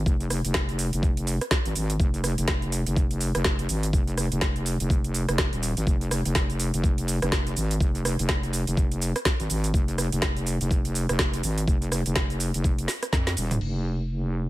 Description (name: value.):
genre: bass house.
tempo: 124 BPM.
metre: 4/4.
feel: swing 59% on 16ths.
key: F minor.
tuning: A4 = 444 Hz.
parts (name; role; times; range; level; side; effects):
wobble bass; bass; 0.0-14.5 s; Eb1 to F2; -26 LUFS; equal; chorus, overdrive, sidechain pumping.
electronic kick drum; drums; 0.1-13.2 s; none; -24 LUFS; equal; overdrive, small room ambience.
garage drum kit; drums; 0.1-13.7 s; crash cymbal, hi-hat, rim click, shaker, snare drum, toms; -28 LUFS; right 1 dB; overdrive, low-pass filter on hats, small room ambience, low-pass filter on perc, low-pass filter on snare, low-pass filter on toms, low-pass filter on cymbals.
room: digital ambience.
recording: none.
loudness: -23 LUFS.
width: side -17 dB against mid.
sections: 0.0-13.6 A section.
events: drop 0.0-13.6; drum fill 13.1-13.6.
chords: none.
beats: | 0.06 0.55 1.03 1.51 | 2.00 2.48 2.97 3.45 | 3.93 4.42 4.90 5.38 | 5.87 6.35 6.84 7.32 | 7.80 8.29 8.77 9.26 | 9.74 10.22 10.71 11.19 | 11.68 12.16 12.64 13.13 | 13.61 14.10.